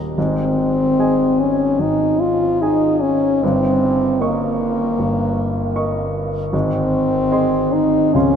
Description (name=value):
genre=classical, romantic duo for French horn and grand piano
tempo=72-78 BPM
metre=4/4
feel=rubato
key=Ab major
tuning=A4 = 439 Hz
part: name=clear grand piano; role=accompaniment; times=0.0-8.4 s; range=Db1 to Db6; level=-20 LUFS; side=right 1 dB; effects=none
part: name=warm French horn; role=melody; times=0.2-8.4 s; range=Bb3 to F4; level=-17 LUFS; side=left 1 dB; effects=none
room=wet huge ambient reverb, RT60 7.9 s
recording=in a vast, echoing space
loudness=-15 LUFS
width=side -7 dB against mid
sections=0.0-8.4 A section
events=none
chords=0.2 Ab; 3.4 Eb7/G; 6.5 Ab